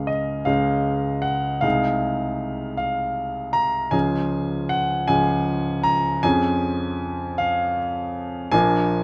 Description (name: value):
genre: classical, romantic nocturne for solo piano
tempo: 52 BPM (dotted quarters)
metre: 6/8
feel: rubato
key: Db major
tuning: A4 = 442 Hz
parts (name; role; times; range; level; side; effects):
- bright grand piano; solo; 0.0-9.0 s; Bb1 to Bb5; -23 LUFS; equal; none
room: moderate large studio reverb, RT60 1.2 s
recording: close, detailed microphones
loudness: -23 LUFS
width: mono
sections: 0.0-9.0 A section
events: none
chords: 0.0 Db; 1.6 Ab/C; 3.9 Db; 6.2 Db/F; 8.5 Bb7